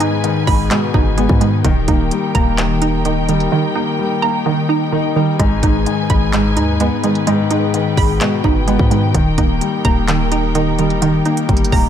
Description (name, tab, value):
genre	hip hop, trap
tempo	128 BPM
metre	4/4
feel	half-time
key	G# harmonic minor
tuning	A4 = 438 Hz
part	dark concert grand piano	accompaniment	0.0-11.9 s	G#2 to D#4	-18 LUFS	left 7 dB	none
part	muted studio string section	sustained chords	0.0-11.9 s	D#4 to G#5	-23 LUFS	right 2 dB	none
part	hollow square pluck	arpeggios	0.0-11.9 s	D#3 to B5	-19 LUFS	right 6 dB	chorus, ping-pong delay
part	trap drum kit	drums	0.0-11.8 s	handclaps, hi-hat, kick drum	-18 LUFS	equal	none
part	warm 808-style bass	bass	0.5-11.9 s	D#1 to G#2	-19 LUFS	equal	none
room	digital ambience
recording	none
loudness	-13 LUFS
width	side -9 dB against mid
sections	0.0-11.9 A section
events	drums muted 3.5-5.4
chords	0.0 G#m; 1.6 D#; 5.4 G#m; 9.1 D#